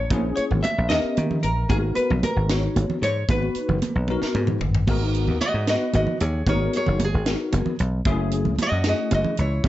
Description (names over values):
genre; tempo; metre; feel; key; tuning
electric jazz fusion; 76 BPM (dotted quarters); 6/8; straight; G# minor; A4 = 442 Hz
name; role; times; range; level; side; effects
nylon-string guitar; melody; 0.0-9.7 s; E4 to E5; -27 LUFS; equal; none
archtop guitar, miked and amplified; second line; 0.0-4.3 s; G#4 to E5; -31 LUFS; left 4 dB; none
dry thumbed slap bass; bass; 0.0-9.7 s; F#1 to D#3; -23 LUFS; equal; none
bell-like tine electric piano; accompaniment; 0.1-9.7 s; A3 to C#5; -27 LUFS; left 3 dB; ensemble chorus
tight funk drum kit; drums; 0.1-9.7 s; crash cymbal, hi-hat, kick drum, snare drum, toms; -27 LUFS; equal; none
congas; percussion; 0.1-9.7 s; none; -28 LUFS; right 3 dB; none
room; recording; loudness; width
moderate studio reverb, RT60 0.8 s; nothing above 7.8 kHz; -20 LUFS; side -14 dB against mid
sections
0.0-4.9 A section; 4.9-9.7 B section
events
drum fill 4.1-4.9; nylon-string guitar solo 4.9-9.7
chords
0.1 A#m7b5; 0.9 D#7b13; 1.7 G#m9; 8.1 F#m9